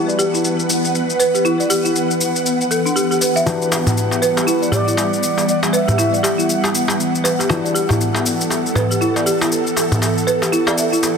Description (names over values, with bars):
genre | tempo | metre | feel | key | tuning
afro house | 119 BPM | 4/4 | swing 59% on 16ths | E minor | A4 = 443 Hz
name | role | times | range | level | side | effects
ethereal airy pad | sustained chords | 0.0-11.2 s | E3 to F#5 | -20 LUFS | right 1 dB | ensemble chorus, built-in reverb
folk marimba with medium mallets | arpeggios | 0.0-11.0 s | D4 to E5 | -20 LUFS | equal | low-pass filter, ping-pong delay
felt-muted upright piano | stabs | 0.0-11.2 s | E3 to B4 | -26 LUFS | left 5 dB | low-pass filter, ping-pong delay
shaker | drums | 0.1-11.1 s | none | -23 LUFS | left 3 dB | overdrive
expressive portamento lead | melody | 3.5-6.7 s | B4 to E5 | -22 LUFS | right 1 dB | analog chorus, cassette tape, ping-pong delay
darbuka | percussion | 3.5-11.1 s | none | -21 LUFS | equal | none
room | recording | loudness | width
moderate lush hall reverb, RT60 2.1 s | dense, heavily limited modern master | -15 LUFS | side -6 dB against mid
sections
0.0-11.2 A section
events
none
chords
0.0 Em9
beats
0.44 0.94 | 1.45 1.95 2.46 2.96 | 3.46 3.97 4.47 4.98 | 5.48 5.98 6.49 6.99 | 7.50 8.00 8.51 9.01 | 9.51 10.02 10.52 11.03